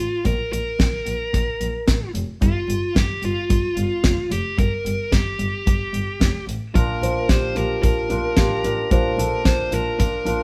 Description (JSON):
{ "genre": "piano-driven pop", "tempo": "111 BPM", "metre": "4/4", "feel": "straight", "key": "Bb major", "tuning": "A4 = 440 Hz", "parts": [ { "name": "dark smooth lead guitar", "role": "melody", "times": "0.0-10.4 s", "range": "F4 to C5", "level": "-27 LUFS", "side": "equal", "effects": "overdrive" }, { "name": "dark double bass", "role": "bass", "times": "0.0-10.3 s", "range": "F1 to Bb1", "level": "-28 LUFS", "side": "equal", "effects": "none" }, { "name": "damped 70s drum kit", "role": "drums", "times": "0.2-10.4 s", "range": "hi-hat, kick drum, snare drum", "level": "-22 LUFS", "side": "equal", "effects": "none" }, { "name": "dark grand piano", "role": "accompaniment", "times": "6.7-10.4 s", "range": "Bb2 to C5", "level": "-25 LUFS", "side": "equal", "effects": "none" } ], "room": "light reverb", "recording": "band playing live in one room", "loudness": "-21 LUFS", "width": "mono", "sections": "0.0-10.4 A section", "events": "none", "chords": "0.0 Bb5; 2.4 N.C.; 6.8 Bb" }